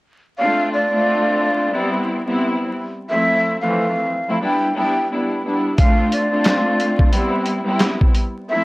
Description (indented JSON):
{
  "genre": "hip hop, boom-bap hip-hop",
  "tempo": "89 BPM",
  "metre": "4/4",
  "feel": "swing 58% on 16ths",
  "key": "D dorian",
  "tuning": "A4 = 440 Hz",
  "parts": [
    { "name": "breathy mellow silver concert flute", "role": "melody", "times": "0.4-8.6 s", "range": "D5 to G5", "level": "-20 LUFS", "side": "equal", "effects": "high-pass filter, low-pass filter, plate reverb" },
    { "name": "muted studio string section", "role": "accompaniment", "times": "0.4-8.6 s", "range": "E3 to F4", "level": "-19 LUFS", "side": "equal", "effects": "high-pass filter, low-pass filter, plate reverb" },
    { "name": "boom bap sampler-style drum kit", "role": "drums", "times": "5.8-8.3 s", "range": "handclaps, hi-hat, kick drum, snare drum", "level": "-16 LUFS", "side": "equal", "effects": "none" }
  ],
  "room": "moderate small room reverb, RT60 0.6 s",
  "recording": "worn, warbling old tape, cassette tape, vinyl crackle, warbly pitch drift",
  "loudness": "-16 LUFS",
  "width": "side -21 dB against mid",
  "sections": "0.4-8.6 A section",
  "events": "none",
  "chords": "0.4 Dm7; 1.7 Cmaj7; 3.1 Fmaj7; 4.4 Em7; 5.8 Dm7; 7.1 Cmaj7"
}